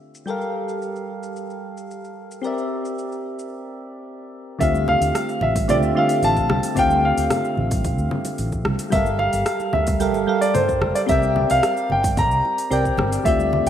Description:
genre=sunset chillout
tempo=111 BPM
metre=4/4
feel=straight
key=D minor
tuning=A4 = 440 Hz
part: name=soft electric-piano-like synth keys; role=accompaniment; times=0.0-13.7 s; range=D3 to G5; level=-24 LUFS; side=moving between left 4 dB and right 4 dB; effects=chorus, auto-pan, digital delay
part: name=deep house drum kit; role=drums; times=0.1-13.7 s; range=congas, hi-hat, rim click, shaker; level=-27 LUFS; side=left 2 dB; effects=overdrive, low-pass filter on perc, small room ambience, low-pass filter on hats, low-pass filter on snare
part: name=warm grand piano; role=melody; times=4.6-13.7 s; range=C5 to Bb5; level=-21 LUFS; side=equal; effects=digital delay
part: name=mellow fretless electric bass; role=bass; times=4.6-13.7 s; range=F1 to G2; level=-24 LUFS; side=equal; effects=none
part: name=electronic kick drum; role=drums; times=4.6-13.4 s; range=none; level=-26 LUFS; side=equal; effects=overdrive, small room ambience
part: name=congas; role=percussion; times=4.7-13.6 s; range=none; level=-32 LUFS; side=right 3 dB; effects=none
room=wet lush hall reverb, RT60 2.0 s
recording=rough home demo mix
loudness=-18 LUFS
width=side -9 dB against mid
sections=0.0-4.6 A section; 4.6-13.7 B section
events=break 3.5-4.6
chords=0.3 Gm7; 2.4 C9; 4.6 Dm11; 8.9 Gm7; 11.1 Csus2

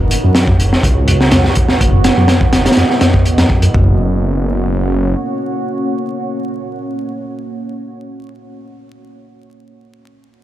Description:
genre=breakbeat, breaks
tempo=124 BPM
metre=4/4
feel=swing 53% on 16ths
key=F# mixolydian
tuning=A4 = 436 Hz
part: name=deep dark ambient pad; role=sustained chords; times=0.0-8.0 s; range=A#3 to D#5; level=-20 LUFS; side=right 2 dB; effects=chorus, built-in reverb, sidechain pumping
part: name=deep acid bass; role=riff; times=0.0-4.0 s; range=E2 to E3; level=-16 LUFS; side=equal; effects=ensemble chorus
part: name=detuned saw bass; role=bass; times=0.0-5.2 s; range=F#1 to F#2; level=-15 LUFS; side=equal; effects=none
part: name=crunchy breakbeat drum kit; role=drums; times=0.1-3.8 s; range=hi-hat, kick drum, snare drum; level=-13 LUFS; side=equal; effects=none
room=light reverb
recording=vinyl crackle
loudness=-11 LUFS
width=side -13 dB against mid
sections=0.0-3.7 A section; 3.7-7.6 B section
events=filter sweep on detuned saw bass 0.0-3.7; filter sweep on acid bass 0.0-3.7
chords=0.0 F#7sus4; 3.7 F#

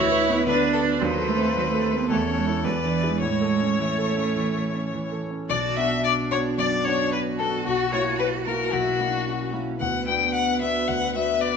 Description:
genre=quick classical-period movement for piano quartet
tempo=111 BPM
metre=4/4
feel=rubato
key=A major, B minor from 5.5 s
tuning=A4 = 440 Hz
part: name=clear violin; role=melody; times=0.0-11.6 s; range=F#4 to G5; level=-26 LUFS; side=left 6 dB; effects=none
part: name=rich cello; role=second line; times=0.0-11.6 s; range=E3 to F#4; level=-26 LUFS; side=right 5 dB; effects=none
part: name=warm violin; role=second line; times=0.0-11.6 s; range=F#4 to E5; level=-30 LUFS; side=left 4 dB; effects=none
part: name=warm concert grand piano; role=accompaniment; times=0.0-11.6 s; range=B1 to B4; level=-27 LUFS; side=right 1 dB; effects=none
room=wet recital hall reverb, RT60 1.5 s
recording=nothing above 7.9 kHz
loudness=-21 LUFS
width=side -6 dB against mid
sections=0.0-5.5 A section; 5.5-11.6 B section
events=none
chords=0.0 Bm/D; 1.0 B7b9/D#; 2.1 A/E; 2.6 E7; 3.2 A; 5.5 Bm; 7.7 F#7/B; 9.8 Bm/D

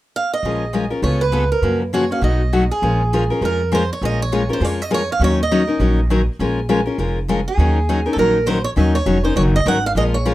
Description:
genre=acoustic string swing (jazz manouche)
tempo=202 BPM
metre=4/4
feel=swing 59% on 8ths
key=Bb minor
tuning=A4 = 440 Hz
part: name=picked swing-style acoustic guitar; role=melody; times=0.2-10.3 s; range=Ab4 to Gb5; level=-21 LUFS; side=right 3 dB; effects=none
part: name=picked steel-string acoustic guitar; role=accompaniment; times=0.4-10.3 s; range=B2 to Bb4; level=-19 LUFS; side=left 3 dB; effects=none
part: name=upright bass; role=bass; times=0.4-10.3 s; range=F1 to Gb2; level=-20 LUFS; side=equal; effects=none
room=light reverb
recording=rough home demo mix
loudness=-15 LUFS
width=side -15 dB against mid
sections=0.4-2.8 A section; 2.8-10.3 B section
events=none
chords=0.4 Bbm7; 1.0 Dbaug7; 1.6 Gbmaj7; 2.2 B7; 2.8 Bbm7; 5.2 Ebm7; 6.4 Bbm7; 7.6 Ebm7

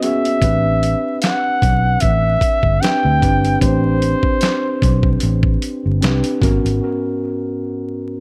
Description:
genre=R&B, neo-soul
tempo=75 BPM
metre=4/4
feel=swing 56% on 16ths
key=unclear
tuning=A4 = 440 Hz
part: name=breathy flugelhorn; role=melody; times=0.0-5.2 s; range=C5 to G5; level=-21 LUFS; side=equal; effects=none
part: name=mellow tine electric piano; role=accompaniment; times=0.0-8.2 s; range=G#2 to C5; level=-23 LUFS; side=equal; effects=none
part: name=boom bap sampler-style drum kit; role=drums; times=0.0-6.8 s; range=handclaps, hi-hat, kick drum, snare drum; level=-21 LUFS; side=equal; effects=none
part: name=vintage muted fingered electric bass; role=bass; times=0.4-6.8 s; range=G1 to D2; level=-20 LUFS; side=equal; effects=none
room=light reverb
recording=echo-heavy mix, vinyl crackle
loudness=-17 LUFS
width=mono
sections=0.0-6.8 A section; 6.8-8.2 B section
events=none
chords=0.4 Am11; 6.4 G#m11

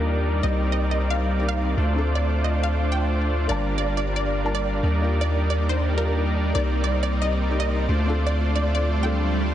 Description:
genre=future bass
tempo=157 BPM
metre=4/4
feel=half-time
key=unclear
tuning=A4 = 438 Hz
part: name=felt-muted upright piano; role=accompaniment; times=0.0-9.5 s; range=Bb3 to A5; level=-32 LUFS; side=left 4 dB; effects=dub echo
part: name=ethereal airy pad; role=sustained chords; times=0.0-9.5 s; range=Bb3 to D6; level=-36 LUFS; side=equal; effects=ensemble chorus, built-in reverb, tremolo
part: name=dense compressed supersaw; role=riff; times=0.0-9.5 s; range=G3 to D5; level=-27 LUFS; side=right 1 dB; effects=cassette tape, low-pass filter
part: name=long sustained 808-style bass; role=bass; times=0.0-9.5 s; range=G1 to Eb2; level=-23 LUFS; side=equal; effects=none
part: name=wide unison pluck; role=melody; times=0.4-9.2 s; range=Bb4 to G5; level=-30 LUFS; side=moving between left 2 dB and right 5 dB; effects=auto-pan, ping-pong delay
part: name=swell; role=sound effects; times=9.0-9.5 s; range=none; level=-28 LUFS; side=right 2 dB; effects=none
room=light reverb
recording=heavily compressed radio sound, nothing above 10.7 kHz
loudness=-20 LUFS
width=side -11 dB against mid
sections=0.0-9.5 A section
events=swell 9.0-9.5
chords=0.4 Cm9; 1.8 Dm7; 3.5 Gm7; 4.8 Ebmaj7; 6.5 Cm9; 7.9 Dm7

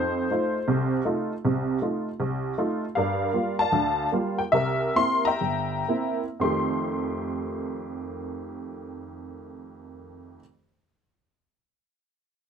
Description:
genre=solo jazz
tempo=111-159 BPM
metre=4/4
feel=swing 66% on 8ths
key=F mixolydian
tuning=A4 = 440 Hz
part: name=honky-tonk upright piano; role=solo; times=0.0-10.4 s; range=G1 to C6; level=-24 LUFS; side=equal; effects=none
room=light reverb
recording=none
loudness=-24 LUFS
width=side -7 dB against mid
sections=0.0-2.9 A section; 2.9-6.4 B section; 6.4-10.7 C section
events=slowing down 2.9-6.4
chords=0.0 F7; 2.9 Gm7; 4.5 C7; 6.4 F9

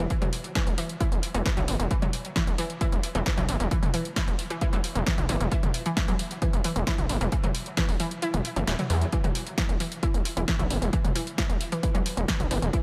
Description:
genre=driving peak-time techno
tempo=133 BPM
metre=4/4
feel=straight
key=E minor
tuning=A4 = 445 Hz
part: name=unison pluck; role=riff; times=0.0-12.8 s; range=E3 to E4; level=-34 LUFS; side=equal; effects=analog chorus, sidechain pumping, diffuse ambient delay
part: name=gritty driven synth bass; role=bass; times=0.0-12.7 s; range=D1 to E2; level=-30 LUFS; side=equal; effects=sidechain pumping
part: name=electronic kick drum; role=drums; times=0.1-12.8 s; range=none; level=-30 LUFS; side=equal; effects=none
part: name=techno drum kit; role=drums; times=0.1-12.8 s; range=hi-hat, snare drum, toms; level=-34 LUFS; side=equal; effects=sidechain pumping on hats, sidechain pumping on toms
room=light reverb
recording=none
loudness=-27 LUFS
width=mono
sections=0.0-12.8 A section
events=kick drops out 8.2-9.1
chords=none

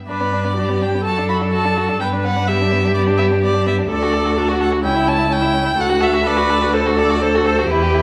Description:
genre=quick classical-period movement for string quartet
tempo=126 BPM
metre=4/4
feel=straight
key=G major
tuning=A4 = 439 Hz
part: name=warm violin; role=melody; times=0.1-8.0 s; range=B4 to B5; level=-24 LUFS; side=equal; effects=none
part: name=rich violin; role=second line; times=0.1-8.0 s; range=B3 to A4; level=-26 LUFS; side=equal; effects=none
part: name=rich viola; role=accompaniment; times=0.1-8.0 s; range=E4 to B4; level=-22 LUFS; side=equal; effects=none
part: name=rich cello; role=bass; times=0.1-8.0 s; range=C#2 to G2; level=-22 LUFS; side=equal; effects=none
room=wet recital hall reverb, RT60 1.4 s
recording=none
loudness=-17 LUFS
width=mono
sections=0.1-8.0 A section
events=none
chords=0.1 G; 1.0 D/F#; 2.0 G; 3.9 D; 4.8 C#dim; 5.8 D

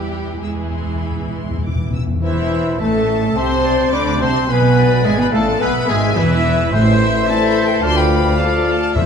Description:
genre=quick classical-period movement for symphony orchestra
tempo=107 BPM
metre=4/4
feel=rubato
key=A minor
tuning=A4 = 440 Hz
part: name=rich chamber violin section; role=melody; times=0.0-9.1 s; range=E5 to E6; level=-25 LUFS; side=left 6 dB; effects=none
part: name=rich chamber violin section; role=second line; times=0.0-9.1 s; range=E4 to D5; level=-25 LUFS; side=left 6 dB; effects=none
part: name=rich chamber viola section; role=accompaniment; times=0.0-8.5 s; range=E3 to F4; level=-26 LUFS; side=right 2 dB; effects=none
part: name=warm chamber double bass section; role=bass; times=0.0-9.1 s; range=E1 to E2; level=-22 LUFS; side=right 4 dB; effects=none
part: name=warm studio cello section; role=bass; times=0.0-9.1 s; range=D2 to G#3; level=-22 LUFS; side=right 3 dB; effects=none
part: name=timpani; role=percussion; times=0.0-2.2, 6.7-9.1 s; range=E2 to A2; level=-22 LUFS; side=left 1 dB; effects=none
part: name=clear clarinet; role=second line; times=2.2-9.1 s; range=E4 to D5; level=-25 LUFS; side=left 2 dB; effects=none
part: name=silver concert flute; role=second line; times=2.2-9.1 s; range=B4 to B5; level=-24 LUFS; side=left 2 dB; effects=none
part: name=mellow bassoon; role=accompaniment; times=2.2-9.1 s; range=E3 to D4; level=-25 LUFS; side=equal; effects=none
part: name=dark French horn section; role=sustained chords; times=2.2-9.1 s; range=E3 to F4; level=-21 LUFS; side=left 4 dB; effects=none
part: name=clear trumpet section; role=stabs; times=2.2-9.1 s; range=E4 to D5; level=-24 LUFS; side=right 1 dB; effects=none
part: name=bright oboe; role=second line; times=3.4-9.1 s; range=B4 to F5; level=-26 LUFS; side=equal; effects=none
room=moderate recital hall reverb, RT60 1.4 s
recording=dark, warm production, lossy compression artefacts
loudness=-14 LUFS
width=side -6 dB against mid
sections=0.0-2.2 A section; 2.2-9.1 B section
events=timpani fill 0.0-2.2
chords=0.0 E; 2.2 Am/E; 4.5 E7; 6.7 Am; 7.8 Dm

